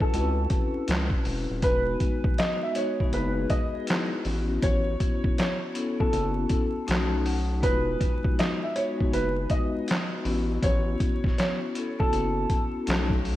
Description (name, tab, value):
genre	lo-fi hip hop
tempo	80 BPM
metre	4/4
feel	swing 64% on 16ths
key	unclear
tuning	A4 = 440 Hz
part	warm upright piano	melody	0.0-13.1 s	A4 to E5	-30 LUFS	right 1 dB	lush chorus, low-pass filter, diffuse ambient delay
part	vibraphone with soft mallets	accompaniment	0.0-13.4 s	G#3 to A5	-30 LUFS	left 3 dB	cassette tape, low-pass filter
part	warm analog pad	sustained chords	0.0-1.6 s	A3 to F#4	-49 LUFS	right 3 dB	none
part	trip hop sampler-style drum kit	drums	0.0-13.4 s	handclaps, hi-hat, kick drum, snare drum	-27 LUFS	equal	none
part	round analog bass	bass	0.1-13.4 s	D#1 to C#2	-28 LUFS	equal	none
room	light reverb, digital ambience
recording	vinyl crackle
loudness	-24 LUFS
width	side -14 dB against mid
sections	0.0-1.6 A section; 1.6-13.4 B section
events	none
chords	0.0 A6; 1.6 Emaj9; 4.3 A69; 6.9 B9; 7.6 Emaj9; 10.3 A69